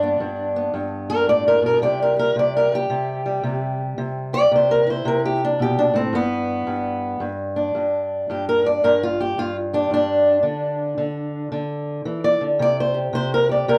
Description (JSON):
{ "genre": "acoustic country blues, solo or duo", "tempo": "111 BPM", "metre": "4/4", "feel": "swing 64% on 8ths", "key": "G major", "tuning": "A4 = 440 Hz", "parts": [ { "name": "fingerpicked steel-string acoustic guitar", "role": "solo", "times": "0.0-13.8 s", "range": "G2 to D5", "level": "-21 LUFS", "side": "equal", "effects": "none" } ], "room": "moderate small room reverb, RT60 0.5 s", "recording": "close, detailed microphones", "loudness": "-21 LUFS", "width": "mono", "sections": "0.0-13.8 A section", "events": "steel-string acoustic guitar solo 0.0-13.8", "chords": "0.0 G; 1.8 C; 6.1 G; 10.4 Dsus2; 12.6 C5" }